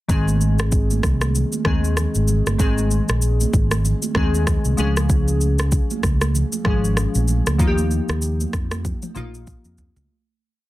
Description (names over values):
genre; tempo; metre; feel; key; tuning
afrobeats; 96 BPM; 4/4; swing 58% on 16ths; Ab major; A4 = 442 Hz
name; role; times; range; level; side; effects
glassy digital keys; accompaniment; 0.1-10.1 s; Eb3 to Ab4; -24 LUFS; left 2 dB; chorus
fingered electric bass; bass; 0.1-10.1 s; G1 to F2; -20 LUFS; equal; none
afro-pop drum kit; drums; 0.1-10.1 s; kick drum, rim click, shaker, toms; -21 LUFS; equal; overdrive
congas; percussion; 0.3-10.1 s; none; -30 LUFS; right 10 dB; none
room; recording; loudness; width
light reverb; dense, heavily limited modern master; -17 LUFS; side -16 dB against mid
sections
0.1-10.1 verse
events
fade-out 7.6-10.1; drum fill 8.8-10.1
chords
0.1 Ab; 4.8 Db; 7.6 Ebadd9